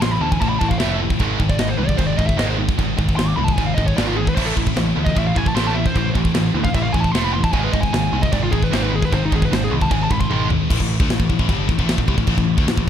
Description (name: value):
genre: heavy metal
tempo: 152 BPM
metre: 4/4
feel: straight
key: A harmonic minor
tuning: A4 = 442 Hz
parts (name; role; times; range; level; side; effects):
- high-gain lead guitar; melody; 0.0-10.4 s; D#4 to D6; -25 LUFS; equal; distortion
- distorted electric guitar; riff; 0.0-10.7 s; G#2 to A3; -25 LUFS; right 12 dB; distortion
- scooped high-gain guitar; riff; 0.0-12.9 s; G2 to A3; -24 LUFS; left 12 dB; distortion
- scooped high-gain guitar; riff; 0.0-12.9 s; G2 to E4; -27 LUFS; right 1 dB; distortion
- growling picked electric bass; bass; 0.0-12.9 s; F1 to D2; -23 LUFS; equal; overdrive
- tight metal drum kit; drums; 0.0-12.9 s; china cymbal, crash cymbal, kick drum, snare drum, toms; -21 LUFS; equal; none
room: little or no reverb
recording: dark, warm production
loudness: -16 LUFS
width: side -9 dB against mid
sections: 0.0-10.7 A section; 10.7-12.9 B section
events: lead electric guitar solo 0.0-10.7; drum fill 10.3-10.7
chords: 0.0 Am; 1.2 G#; 4.4 Am; 7.5 G#; 10.7 Am